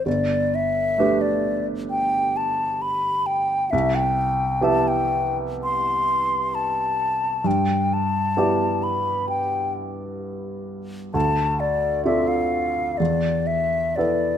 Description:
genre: classical, impressionist duo for flute and grand piano.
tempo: 65 BPM.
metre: 4/4.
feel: rubato.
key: unclear.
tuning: A4 = 440 Hz.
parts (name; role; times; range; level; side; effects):
mellow hollow silver concert flute; melody; 0.0-14.4 s; D5 to C6; -22 LUFS; left 2 dB; none.
clear grand piano; accompaniment; 0.0-14.4 s; G1 to E5; -24 LUFS; right 2 dB; none.
room: light reverb.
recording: close, detailed microphones.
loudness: -20 LUFS.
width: side -9 dB against mid.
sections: 0.0-14.4 A section.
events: none.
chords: 0.1 Gadd9; 3.7 Cmaj7; 7.5 G69; 11.1 Dm7; 13.0 Esus4.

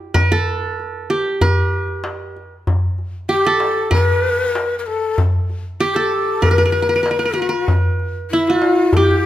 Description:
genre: Arabic maqam ensemble.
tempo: 96 BPM.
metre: 4/4.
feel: straight.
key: G maqam rast.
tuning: A4 = 440 Hz.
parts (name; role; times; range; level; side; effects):
qanun; melody; 0.0-9.3 s; E4 to Bb4+50c; -18 LUFS; right 2 dB; none.
darbuka; percussion; 0.1-9.1 s; none; -18 LUFS; left 1 dB; none.
breathy bright ney; second line; 3.3-9.3 s; E4 to B4-44c; -19 LUFS; left 5 dB; none.
room: light reverb.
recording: none.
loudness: -15 LUFS.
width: side -13 dB against mid.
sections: 0.0-9.3 A section.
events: none.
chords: none.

